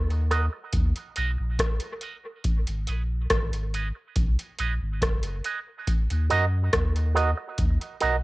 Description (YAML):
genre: dub reggae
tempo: 70 BPM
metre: 4/4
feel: straight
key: Eb minor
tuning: A4 = 440 Hz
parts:
  - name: warm sub bass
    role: bass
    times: 0.0-8.2 s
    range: Gb1 to Gb2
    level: -26 LUFS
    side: equal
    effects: transformer saturation
  - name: booming analog drum machine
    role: drums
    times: 0.1-8.2 s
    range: hi-hat, kick drum, rim click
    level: -25 LUFS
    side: equal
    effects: none
  - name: electric guitar with an envelope filter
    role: accompaniment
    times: 0.3-8.2 s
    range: Gb4 to Eb5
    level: -28 LUFS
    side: right 5 dB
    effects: high-pass filter, dub echo, plate reverb
room: little or no reverb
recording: home recording on cassette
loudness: -24 LUFS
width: side -20 dB against mid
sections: 0.0-8.2 A section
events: none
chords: 0.0 Ebm; 2.4 Abm; 5.9 Ebm